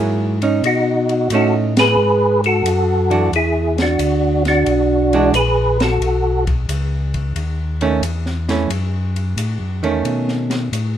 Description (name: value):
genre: soul jazz organ trio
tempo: 89 BPM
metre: 4/4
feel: swing 68% on 8ths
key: B mixolydian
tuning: A4 = 440 Hz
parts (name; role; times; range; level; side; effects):
- hollow-body jazz guitar; accompaniment; 0.0-10.7 s; D#3 to G#4; -19 LUFS; right 5 dB; none
- mellow tonewheel organ; bass; 0.0-11.0 s; A#1 to B2; -19 LUFS; left 1 dB; chorus vibrato, slow rotary speaker
- compact cocktail drum kit; drums; 0.4-10.9 s; hi-hat, kick drum, ride cymbal, snare drum; -26 LUFS; left 1 dB; none
- percussive tonewheel organ; melody; 0.7-6.4 s; D4 to B4; -15 LUFS; equal; slow rotary speaker, chorus vibrato
room: light reverb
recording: minimal, uncompressed stereo recording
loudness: -15 LUFS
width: side -10 dB against mid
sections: 0.6-11.0 A section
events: band accent 1.6-2.0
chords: 0.0 F#9; 0.6 B9; 3.3 E9; 6.0 B9; 8.7 F#m7; 10.0 B9